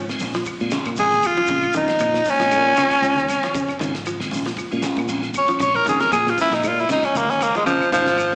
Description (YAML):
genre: afrobeat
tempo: 117 BPM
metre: 4/4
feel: swing 55% on 16ths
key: Bb minor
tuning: A4 = 439 Hz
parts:
  - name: electric guitar at the edge of break-up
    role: arpeggios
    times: 0.0-8.2 s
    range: Db3 to F3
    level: -32 LUFS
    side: equal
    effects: phaser, slapback echo, tape echo
  - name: fingered electric bass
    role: bass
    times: 0.0-8.3 s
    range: Ab1 to Bb2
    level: -30 LUFS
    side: equal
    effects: none
  - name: tonewheel organ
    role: accompaniment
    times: 0.1-8.1 s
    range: Db3 to Db4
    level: -33 LUFS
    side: equal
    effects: slow rotary speaker, overdrive, chorus vibrato, slapback echo
  - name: mellow electric guitar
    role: stabs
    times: 0.1-8.1 s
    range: Ab3 to C5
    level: -33 LUFS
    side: equal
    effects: phaser, slapback echo
  - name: damped 70s drum kit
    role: drums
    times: 0.1-8.3 s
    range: hi-hat, kick drum, ride cymbal, snare drum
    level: -36 LUFS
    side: equal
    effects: none
  - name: shekere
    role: percussion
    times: 0.1-8.3 s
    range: none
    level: -40 LUFS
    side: equal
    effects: none
  - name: claves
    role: percussion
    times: 0.5-8.3 s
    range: none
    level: -36 LUFS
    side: equal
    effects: none
  - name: congas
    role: percussion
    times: 0.5-8.3 s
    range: none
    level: -40 LUFS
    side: equal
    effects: none
  - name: growling tenor saxophone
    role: melody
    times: 1.0-8.3 s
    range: F3 to Db5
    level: -20 LUFS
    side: equal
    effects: none
room: light reverb, small room ambience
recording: live gig heard through the venue's PA, recital hall reverb, small speaker sound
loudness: -20 LUFS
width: mono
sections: 0.0-8.3 A section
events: tenor saxophone solo 0.0-8.3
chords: 0.0 Bbm9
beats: 0.47 0.98 | 1.50 2.01 2.52 3.04 | 3.55 4.07 4.58 5.10 | 5.61 6.13 6.64 7.16 | 7.67 8.19